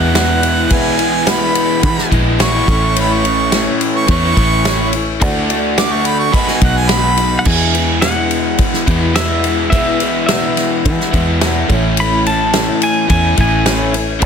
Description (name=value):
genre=folk rock and heartland rock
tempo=106 BPM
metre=4/4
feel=straight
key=E major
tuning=A4 = 440 Hz
part: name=clear harmonica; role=second line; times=0.0-7.4 s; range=F#5 to D6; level=-18 LUFS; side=right 4 dB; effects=none
part: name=dark baby grand piano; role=accompaniment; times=0.0-14.3 s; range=F#4 to G#5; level=-31 LUFS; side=right 4 dB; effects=none
part: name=picked old ladder-braced acoustic guitar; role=accompaniment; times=0.0-14.3 s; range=E2 to F#4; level=-20 LUFS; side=left 5 dB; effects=none
part: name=crunchy overdriven guitar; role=riff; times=0.0-14.3 s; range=E2 to F#4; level=-18 LUFS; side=equal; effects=none
part: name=fingered electric bass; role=bass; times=0.0-14.3 s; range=A1 to E3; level=-18 LUFS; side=equal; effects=none
part: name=natural country drum kit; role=drums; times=0.2-14.3 s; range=crash cymbal, kick drum, ride cymbal, snare drum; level=-17 LUFS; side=equal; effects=none
part: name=pedal steel guitar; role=melody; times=7.4-14.3 s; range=E5 to B5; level=-19 LUFS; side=equal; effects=none
room=light reverb, small room ambience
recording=dense, heavily limited modern master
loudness=-11 LUFS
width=side -7 dB against mid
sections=0.0-7.5 A section; 7.5-14.3 B section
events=harmonica solo 0.0-7.5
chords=0.0 E; 2.7 A; 5.2 D; 6.3 B6; 7.5 E; 11.7 A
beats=0.15 | 0.71 1.27 1.84 2.40 | 2.96 3.52 4.09 4.65 | 5.21 5.78 6.34 6.90 | 7.46 8.03 8.59 9.15 | 9.72 10.28 10.85 11.41 | 11.97 12.54 13.10 13.67 | 14.23